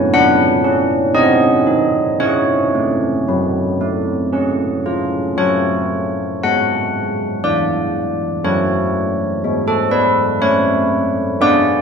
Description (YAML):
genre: classical, tune for church bells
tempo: 59 BPM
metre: 3/4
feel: uneven beats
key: F# minor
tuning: A4 = 441 Hz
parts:
  - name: carillon bells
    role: solo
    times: 0.0-11.8 s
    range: E3 to F#5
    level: -14 LUFS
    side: equal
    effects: none
room: wet recital hall reverb, RT60 1.5 s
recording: dark, warm production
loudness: -14 LUFS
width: side -6 dB against mid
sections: 0.0-5.4 A section; 5.4-11.8 B section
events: none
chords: 0.0 G#7(b5, no3); 1.2 G#/B#; 2.2 C#sus4; 4.3 C#; 5.4 F#m